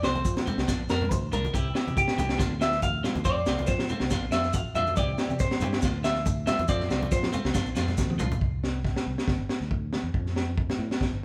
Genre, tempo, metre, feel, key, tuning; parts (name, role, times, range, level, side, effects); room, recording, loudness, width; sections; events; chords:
highlife guitar band; 140 BPM; 4/4; swing 53% on 16ths; A4 = 442 Hz
clean electric guitar; accompaniment; 0.0-8.3 s; E3 to G4; -38 LUFS; equal
semi-hollow electric guitar; arpeggios; 0.0-7.5 s; E4 to F5; -32 LUFS; equal
fingered electric bass; bass; 0.0-11.2 s; G1 to F3; -34 LUFS; equal
crunchy breakbeat drum kit; drums; 0.0-11.1 s; kick drum, snare drum, toms; -30 LUFS; equal
maracas; percussion; 0.0-8.4 s; -46 LUFS; equal
congas; percussion; 0.2-8.4 s; -38 LUFS; equal
light reverb; band playing live in one room; -27 LUFS; mono
0.0-8.4 A section; 8.4-11.2 B section
clean electric guitar solo 0.0-8.4; drum fill 8.0-8.4
0.0 F; 0.7 Bb; 1.5 C; 2.4 Bb/D; 3.3 F; 4.1 Bb; 5.0 C; 5.8 Bb/D; 6.7 F; 7.5 Bb; 8.4 N.C.